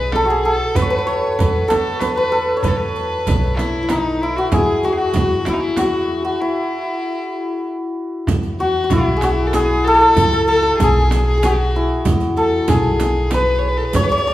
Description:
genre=Persian modal ensemble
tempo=96 BPM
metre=3/4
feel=straight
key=E dastgah mahur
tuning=A4 = 445 Hz
part: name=santur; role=melody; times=0.0-14.3 s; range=D#4 to D#5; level=-18 LUFS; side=left 1 dB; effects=none
part: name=warm violin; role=second line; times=0.0-14.3 s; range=D#4 to C#5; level=-22 LUFS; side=left 2 dB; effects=none
part: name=upright bass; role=bass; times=0.0-14.3 s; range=B1 to E2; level=-22 LUFS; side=equal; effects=none
part: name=frame drum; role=percussion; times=0.1-14.1 s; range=none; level=-24 LUFS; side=right 1 dB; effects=none
part: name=tombak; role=percussion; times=0.1-14.2 s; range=none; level=-25 LUFS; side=right 2 dB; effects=none
part: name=riq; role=percussion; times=0.8-14.2 s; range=none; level=-30 LUFS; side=right 4 dB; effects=none
room=wet recital hall reverb, RT60 1.6 s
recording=recorded in a church or concert hall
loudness=-15 LUFS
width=side -14 dB against mid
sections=0.0-8.3 A section; 8.3-14.3 B section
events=break 6.4-8.3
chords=none

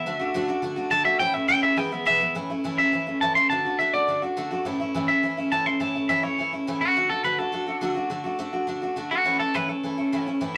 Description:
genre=rock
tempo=209 BPM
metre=4/4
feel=straight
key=A major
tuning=A4 = 440 Hz
part: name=twangy electric guitar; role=melody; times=0.0-10.2 s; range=F#4 to C6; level=-25 LUFS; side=equal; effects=none
part: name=picked steel-string acoustic guitar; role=accompaniment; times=0.0-10.6 s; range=E2 to F#4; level=-29 LUFS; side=equal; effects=none
room=moderate studio reverb, RT60 0.6 s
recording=rough rehearsal-room recording, tube saturation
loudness=-24 LUFS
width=mono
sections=0.0-2.4 A section; 2.4-10.6 B section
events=clean electric guitar solo 0.0-2.4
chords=0.1 D; 1.2 A; 1.8 E; 2.4 A; 3.5 D; 4.7 A; 7.0 D; 9.3 A

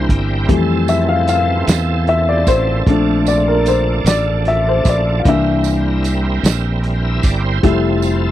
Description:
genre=slow gospel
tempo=50 BPM (dotted quarters)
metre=6/8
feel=straight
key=F major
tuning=A4 = 440 Hz
part: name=dark upright piano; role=accompaniment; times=0.0-8.3 s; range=E3 to F5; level=-16 LUFS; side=left 3 dB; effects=none
part: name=bright tonewheel organ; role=sustained chords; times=0.0-8.3 s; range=E3 to G5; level=-23 LUFS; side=right 4 dB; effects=fast rotary speaker, overdrive, chorus vibrato
part: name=fingered electric bass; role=bass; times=0.0-8.3 s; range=F1 to F2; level=-18 LUFS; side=right 1 dB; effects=none
part: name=warm soul drum kit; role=drums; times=0.1-8.2 s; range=hi-hat, kick drum, snare drum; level=-15 LUFS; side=right 1 dB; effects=none
part: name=tambourine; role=percussion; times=0.9-8.3 s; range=none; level=-28 LUFS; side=right 25 dB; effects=none
room=little or no reverb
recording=dry, close 1970s-style studio recording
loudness=-13 LUFS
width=side -13 dB against mid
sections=0.0-8.3 A section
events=tonewheel organ fill 0.0-0.5; upright piano solo 0.0-8.3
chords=0.5 Fmaj7; 2.9 Bbmaj7; 5.2 C7; 7.6 Fmaj7

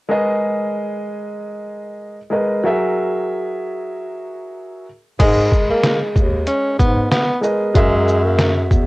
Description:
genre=hip hop, boom-bap hip-hop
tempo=94 BPM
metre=4/4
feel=swing 58% on 16ths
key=G# minor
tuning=A4 = 440 Hz
part: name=dark grand piano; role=accompaniment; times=0.1-8.9 s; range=F#3 to E5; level=-20 LUFS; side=equal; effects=high-pass filter, low-pass filter, cassette tape
part: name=breathy tenor saxophone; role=melody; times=5.2-8.5 s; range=G#3 to C#4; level=-19 LUFS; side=equal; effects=high-pass filter, low-pass filter, cassette tape, analog delay
part: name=mellow bass clarinet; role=bass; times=5.2-8.9 s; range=D#2 to G#2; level=-19 LUFS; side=equal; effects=none
part: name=trip hop sampler-style drum kit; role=drums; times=5.2-8.9 s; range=crash cymbal, hi-hat, kick drum, shaker, snare drum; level=-16 LUFS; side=equal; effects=vintage 12-bit sampler grit, cassette tape
room=little or no reverb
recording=home recording on cassette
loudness=-15 LUFS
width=side -21 dB against mid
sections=0.1-5.2 A section; 5.2-8.9 B section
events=none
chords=0.1 G#madd9; 2.6 F#7; 5.2 G#madd9; 7.8 F#7

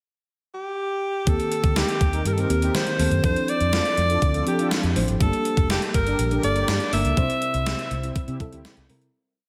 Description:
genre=1980s-style pop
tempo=122 BPM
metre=4/4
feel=straight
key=unclear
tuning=A4 = 440 Hz
part: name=edgy alto saxophone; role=melody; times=0.5-8.6 s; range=G4 to E5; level=-28 LUFS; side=equal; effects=none
part: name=mellow FM electric piano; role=accompaniment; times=1.3-9.2 s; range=Eb3 to C5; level=-31 LUFS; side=equal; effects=chorus
part: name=pipe organ, stopped flute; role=sustained chords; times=1.3-9.1 s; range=C3 to G4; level=-35 LUFS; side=equal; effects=none
part: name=vintage muted fingered electric bass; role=bass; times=1.3-9.1 s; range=F1 to Eb3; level=-28 LUFS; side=equal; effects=none
part: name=gated 80s digital drum machine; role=drums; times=1.3-9.1 s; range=hi-hat, kick drum, snare drum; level=-27 LUFS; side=equal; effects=gated reverb, gated reverb snare, overdrive
part: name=mellow synth brass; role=stabs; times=1.8-8.7 s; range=Bb3 to Bb4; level=-35 LUFS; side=equal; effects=chorus
room=moderate lush hall reverb, RT60 1.8 s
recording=big arena sound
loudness=-22 LUFS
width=mono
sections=0.0-1.3 pickup bar; 1.3-9.1 pre-chorus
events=fade-out 7.2-9.1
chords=0.0 N.C.; 1.3 Eb6; 3.2 Dm7/F; 5.2 Gmadd9; 7.2 C

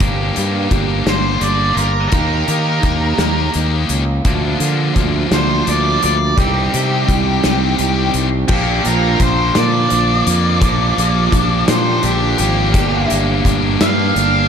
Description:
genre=indie rock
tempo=56 BPM (dotted quarters)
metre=6/8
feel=straight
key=unclear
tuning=A4 = 440 Hz
part: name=crunchy overdriven guitar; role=riff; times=0.0-14.5 s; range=F3 to G4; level=-21 LUFS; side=right 7 dB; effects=analog chorus, slapback echo
part: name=high-gain distorted guitar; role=riff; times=0.0-14.5 s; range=G2 to G4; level=-22 LUFS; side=left 8 dB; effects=distortion, slapback echo
part: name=fuzz fingered electric bass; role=bass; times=0.0-14.5 s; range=G1 to Eb3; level=-18 LUFS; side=equal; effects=overdrive
part: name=loose indie drum kit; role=drums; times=0.0-14.3 s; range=crash cymbal, hi-hat, kick drum, snare drum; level=-19 LUFS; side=left 1 dB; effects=none
part: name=octave-fuzz lead guitar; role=melody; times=1.1-14.5 s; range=G4 to F5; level=-19 LUFS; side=equal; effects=distortion, slapback echo
part: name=phased analog pad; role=sustained chords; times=8.5-14.5 s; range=Bb3 to G4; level=-27 LUFS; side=equal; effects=phaser, chorus
room=moderate concert hall reverb, RT60 2.2 s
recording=big arena sound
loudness=-13 LUFS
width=side -7 dB against mid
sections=0.0-8.5 A section; 8.5-14.5 B section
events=lead electric guitar solo 8.5-14.5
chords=0.0 Gm; 2.1 Eb; 4.3 Bb/D; 6.4 Cm; 8.5 Bb; 12.7 Gm

